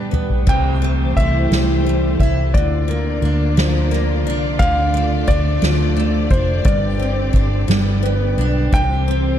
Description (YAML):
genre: six-eight pop ballad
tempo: 58 BPM (dotted quarters)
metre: 6/8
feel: straight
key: C major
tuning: A4 = 442 Hz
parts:
  - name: picked steel-string acoustic guitar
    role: accompaniment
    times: 0.0-9.4 s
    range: G2 to E4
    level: -22 LUFS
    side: right 1 dB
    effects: double-tracked left and right
  - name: warm studio string section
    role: sustained chords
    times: 0.0-9.4 s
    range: D3 to D5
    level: -25 LUFS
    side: left 1 dB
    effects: none
  - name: soft-mallet drum kit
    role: drums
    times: 0.1-9.2 s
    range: crash cymbal, kick drum, ride cymbal, snare drum, toms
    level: -20 LUFS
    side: equal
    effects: none
  - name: clear concert grand piano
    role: melody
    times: 0.5-9.4 s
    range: C5 to G5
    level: -24 LUFS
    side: left 1 dB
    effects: none
  - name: vintage muted fingered electric bass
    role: bass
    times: 0.5-9.4 s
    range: F1 to D2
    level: -18 LUFS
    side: equal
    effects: none
room: studio ambience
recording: dark, warm production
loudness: -15 LUFS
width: side -10 dB against mid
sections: 0.5-9.4 A section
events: drum fill 0.0-0.5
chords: 0.5 C6; 2.5 Bb/D; 4.6 Dm; 6.7 Gsus4; 7.7 G; 8.7 C